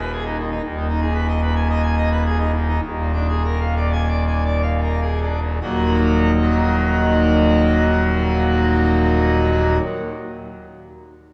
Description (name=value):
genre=classical, organ toccata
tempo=73-120 BPM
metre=4/4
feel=straight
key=Eb minor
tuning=A4 = 440 Hz
part: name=pipe organ, full organ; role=solo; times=0.0-9.8 s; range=Eb1 to Ab5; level=-19 LUFS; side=equal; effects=none
room=wet church reverb, RT60 3.2 s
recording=worn, warbling old tape, cassette tape, warbly pitch drift, small room ambience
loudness=-19 LUFS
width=mono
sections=0.0-5.6 A section; 5.6-11.3 B section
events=slowing down 0.0-5.6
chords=0.0 Abm/Eb; 2.8 Bb7/Eb; 5.6 Ebm